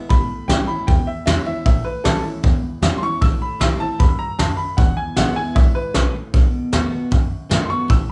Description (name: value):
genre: rockabilly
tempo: 154 BPM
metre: 4/4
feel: straight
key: unclear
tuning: A4 = 440 Hz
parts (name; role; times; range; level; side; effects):
- picked steel-string acoustic guitar; accompaniment; 0.0-8.1 s; E2 to F#4; -29 LUFS; equal; none
- clear upright piano; melody; 0.1-8.1 s; A4 to E6; -27 LUFS; equal; none
- upright bass; bass; 0.1-8.1 s; E1 to F#2; -26 LUFS; equal; none
- soft brush drum kit; drums; 0.1-8.0 s; hi-hat, kick drum, snare drum; -20 LUFS; equal; none
room: light reverb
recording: band playing live in one room, nothing above 11.0 kHz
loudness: -19 LUFS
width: mono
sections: 0.0-8.1 A section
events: upright piano solo 0.0-8.1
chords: 0.1 A7; 3.2 Am7; 4.8 E7; 6.3 B7